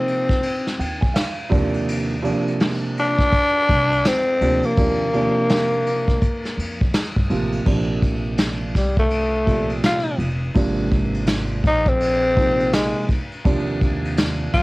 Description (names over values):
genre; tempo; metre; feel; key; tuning
hip hop, jazz-hop; 83 BPM; 4/4; swing 62% on 16ths; unclear; A4 = 437 Hz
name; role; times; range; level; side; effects
growling tenor saxophone; melody; 0.0-14.6 s; G3 to F4; -19 LUFS; left 1 dB; none
dark concert grand piano; accompaniment; 0.0-14.5 s; Bb2 to Ab5; -24 LUFS; right 2 dB; cassette tape
vintage brush drum kit; drums; 0.1-14.6 s; crash cymbal, hi-hat, kick drum, ride cymbal, snare drum; -22 LUFS; equal; none
upright bass; bass; 0.8-14.6 s; F1 to G2; -25 LUFS; equal; none
room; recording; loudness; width
light reverb; home recording on cassette, vinyl crackle; -17 LUFS; side -22 dB against mid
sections
0.0-7.7 A section; 7.7-14.6 B section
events
grand piano fill 0.4-1.9; tenor saxophone solo 7.7-14.6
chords
0.0 Dbmaj9 (rootless); 1.5 Ebmaj7sus2; 7.7 Bbmaj9; 10.6 Abadd9; 13.4 Ebmaj7sus2